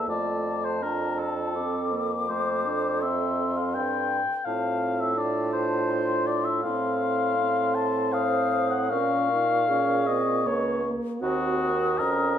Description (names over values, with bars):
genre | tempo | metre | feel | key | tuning
classical, slow romantic movement for wind quintet | 81 BPM | 3/4 | uneven beats, rubato | Bb minor from 6.6 s | A4 = 441 Hz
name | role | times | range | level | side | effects
mellow hollow concert flute | melody | 0.0-12.4 s | A5 to Eb6 | -32 LUFS | left 6 dB | none
mellow oboe | second line | 0.0-12.4 s | Gb4 to A5 | -27 LUFS | left 3 dB | none
mellow French horn | accompaniment | 0.0-12.4 s | A3 to Eb4 | -32 LUFS | right 1 dB | none
warm clarinet | accompaniment | 0.0-12.4 s | F4 to C5 | -32 LUFS | right 7 dB | none
warm bassoon | bass | 0.0-12.4 s | Db2 to Bb2 | -30 LUFS | right 2 dB | none
room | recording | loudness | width
wet recital hall reverb, RT60 1.5 s | minimal, uncompressed stereo recording | -23 LUFS | side -9 dB against mid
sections
0.0-12.4 A section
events
none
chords
0.1 Dm/F; 2.3 F; 4.5 F/A; 6.6 F7/A; 8.9 Bbm; 11.2 Cdim/Eb